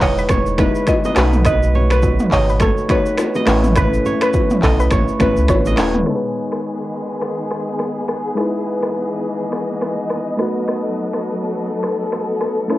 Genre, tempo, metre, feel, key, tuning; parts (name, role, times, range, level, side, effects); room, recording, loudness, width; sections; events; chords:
afrobeats; 104 BPM; 4/4; swing 58% on 16ths; B mixolydian; A4 = 440 Hz
mallet-like synth pluck; melody; 0.0-5.9 s; A4 to D#5; -22 LUFS; right 1 dB; chorus, cassette tape, analog delay
soft electric-piano-like synth keys; accompaniment; 0.0-12.8 s; G#3 to B4; -21 LUFS; left 1 dB; chorus, cassette tape
kora; riff; 0.0-6.9 s; B4 to D#5; -25 LUFS; right 4 dB; cassette tape, analog delay
warm sub bass; bass; 0.0-6.0 s; D#1 to C#2; -18 LUFS; equal
deep house drum kit; drums; 0.0-12.8 s; finger snaps, handclaps, hi-hat, kick drum, rim click, shaker, toms; -20 LUFS; equal; cassette tape
congas and bongos; percussion; 0.3-5.8 s; -25 LUFS; left 3 dB
rich studio string section; sustained chords; 6.1-12.8 s; D#3 to D#5; -23 LUFS; left 1 dB; cassette tape
light reverb; home recording on cassette, low-pass filter; -15 LUFS; side -16 dB against mid
0.0-6.1 A section; 6.1-12.8 B section
0.0 Emaj7; 1.2 B7; 3.5 Aadd9; 6.1 G#m; 8.4 Emaj7; 10.4 B7